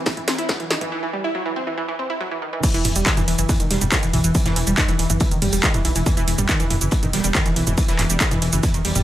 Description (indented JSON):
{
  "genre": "driving peak-time techno",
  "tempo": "140 BPM",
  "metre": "4/4",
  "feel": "straight",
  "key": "E harmonic minor",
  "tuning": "A4 = 440 Hz",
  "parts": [
    { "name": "wide unison pluck", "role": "riff", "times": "0.1-9.0 s", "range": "D#3 to E4", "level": "-23 LUFS", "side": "right 1 dB", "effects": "sidechain pumping, dub echo" },
    { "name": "electronic kick drum", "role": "drums", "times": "0.1-8.7 s", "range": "none", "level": "-21 LUFS", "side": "equal", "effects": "none" },
    { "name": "punchy analog drum machine", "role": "drums", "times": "0.1-9.0 s", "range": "crash cymbal, handclaps, hi-hat, ride cymbal, shaker, snare drum, toms", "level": "-22 LUFS", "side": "right 1 dB", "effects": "sidechain pumping on hats, sidechain pumping on toms, sidechain pumping on cymbals, sidechain pumping on perc" },
    { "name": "raw garage drum kit", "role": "drums", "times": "0.1-8.9 s", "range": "hi-hat, snare drum", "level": "-33 LUFS", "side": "left 1 dB", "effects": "high-pass filter on hats, high-pass filter on snare, high-pass filter on room" },
    { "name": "dark detuned saw bass", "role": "bass", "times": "2.7-9.0 s", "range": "E1 to B1", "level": "-23 LUFS", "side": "equal", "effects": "sidechain pumping" }
  ],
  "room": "light reverb",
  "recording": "high-pass filter",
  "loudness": "-18 LUFS",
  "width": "side -13 dB against mid",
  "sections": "0.0-2.6 A section; 2.6-9.0 B section",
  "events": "build-up 0.0-2.6; drum fill 0.0-0.9; filter sweep 0.0-2.6; break 0.9-2.6; drop 2.6-9.0",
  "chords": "0.0 N.C.; 2.6 E5"
}